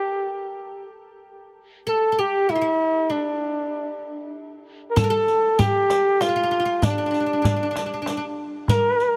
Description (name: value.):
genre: Persian modal ensemble.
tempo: 97 BPM.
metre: 3/4.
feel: straight.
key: D dastgah shur.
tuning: A4 = 443 Hz.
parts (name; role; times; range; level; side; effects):
breathy flugelhorn; melody; 0.0-9.2 s; D4 to Bb4; -24 LUFS; equal; none.
oud; second line; 0.0-9.2 s; D4 to Bb4; -30 LUFS; equal; none.
riq; percussion; 5.0-9.1 s; none; -33 LUFS; equal; none.
tombak; percussion; 5.0-8.8 s; none; -25 LUFS; equal; none.
room: light reverb.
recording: none.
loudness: -22 LUFS.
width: mono.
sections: 0.0-5.0 A section; 5.0-9.2 B section.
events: none.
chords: none.